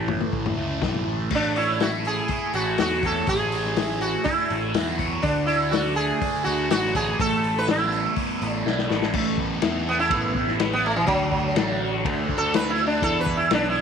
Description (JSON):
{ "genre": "psychedelic rock", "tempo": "123 BPM", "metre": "4/4", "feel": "straight", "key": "unclear", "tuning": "A4 = 441 Hz", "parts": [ { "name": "sitar", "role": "melody", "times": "0.0-13.8 s", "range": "E3 to B4", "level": "-24 LUFS", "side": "right 2 dB", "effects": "tape echo" }, { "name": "thick fuzz guitar", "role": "riff", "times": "0.0-13.8 s", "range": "A2 to D5", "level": "-27 LUFS", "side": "right 1 dB", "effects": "distortion, phaser" }, { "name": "fuzz picked electric bass", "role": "bass", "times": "0.0-13.8 s", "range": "A1 to E2", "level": "-29 LUFS", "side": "right 1 dB", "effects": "overdrive" }, { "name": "vintage drum kit", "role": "drums", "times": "0.1-13.6 s", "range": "crash cymbal, hi-hat, kick drum, ride cymbal, snare drum, toms", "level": "-27 LUFS", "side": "left 6 dB", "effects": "none" } ], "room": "light reverb, studio ambience", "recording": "1960s-style stereo", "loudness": "-21 LUFS", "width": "side -7 dB against mid", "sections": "0.0-1.3 A section; 1.3-9.1 B section; 9.1-13.8 C section", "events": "drum fill 8.7-9.1; sitar solo 9.1-13.8", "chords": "0.0 A; 1.3 A6; 5.2 D; 7.2 Asus2; 11.1 D; 13.0 E5", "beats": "0.34 0.83 | 1.32 1.81 2.30 2.79 | 3.28 3.77 4.26 4.75 | 5.24 5.73 6.22 6.70 | 7.19 7.68 8.16 8.65 | 9.13 9.62 10.11 10.59 | 11.08 11.56 12.05 12.54 | 13.02 13.51" }